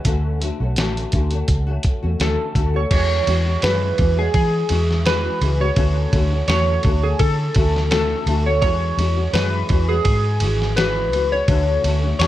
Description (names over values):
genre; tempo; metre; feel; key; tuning
indie pop, bedroom pop; 84 BPM; 4/4; swing 55% on 16ths; E mixolydian; A4 = 444 Hz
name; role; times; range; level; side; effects
nylon-string guitar; accompaniment; 0.0-12.3 s; D3 to F#4; -26 LUFS; left 5 dB; ensemble chorus, warbly pitch drift
dusty soul sampler-style drum kit; drums; 0.0-12.3 s; crash cymbal, hi-hat, kick drum, ride cymbal, snare drum; -22 LUFS; equal; none
vintage muted fingered electric bass; bass; 0.1-12.3 s; G#1 to E3; -20 LUFS; equal; none
chorused retro synth keys; melody; 2.2-12.3 s; G#4 to C#5; -22 LUFS; equal; analog chorus, tape echo
room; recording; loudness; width
light reverb, digital ambience; none; -16 LUFS; side -14 dB against mid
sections
0.0-2.9 A section; 2.9-12.3 B section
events
none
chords
0.1 Dmaj7; 2.9 E69; 5.8 Dmaj7; 8.6 E69; 11.5 Dmaj7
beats
| 0.05 0.77 1.48 2.19 | 2.91 3.62 4.34 5.05 | 5.77 6.48 7.20 7.91 | 8.62 9.34 10.05 10.77 | 11.48 12.20